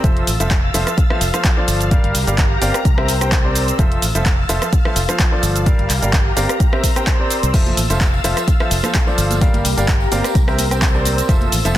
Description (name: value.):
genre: piano house.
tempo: 128 BPM.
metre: 4/4.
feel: swing 54% on 16ths.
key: F major.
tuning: A4 = 440 Hz.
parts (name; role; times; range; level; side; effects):
analog string pad; sustained chords; 0.0-11.8 s; G4 to A6; -25 LUFS; left 2 dB; ensemble chorus, sidechain pumping.
clear baby grand piano; riff; 0.0-11.8 s; F3 to G5; -21 LUFS; equal; sidechain pumping, digital delay.
fingered electric bass; bass; 0.0-11.8 s; F1 to C2; -20 LUFS; equal; sidechain pumping.
electronic kick drum; drums; 0.0-11.4 s; none; -16 LUFS; equal; none.
punchy analog drum machine; drums; 0.0-11.7 s; crash cymbal, handclaps, hi-hat, rim click, shaker; -21 LUFS; right 1 dB; none.
tambourine and congas; percussion; 7.5-11.7 s; none; -29 LUFS; right 5 dB; none.
room: digital ambience.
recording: dense, heavily limited modern master.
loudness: -14 LUFS.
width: side -13 dB against mid.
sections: 0.0-11.8 A section.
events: none.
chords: 0.0 Fmaj7; 1.9 Gm7; 2.9 C7; 3.8 Fmaj7; 5.7 Gm7; 6.6 C7; 7.5 Fmaj7; 9.4 Gm7; 10.4 C7.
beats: | 0.04 0.51 0.98 1.45 | 1.91 2.38 2.85 3.32 | 3.79 4.26 4.73 5.20 | 5.66 6.13 6.60 7.07 | 7.54 8.01 8.48 8.95 | 9.41 9.88 10.35 10.82 | 11.29 11.76.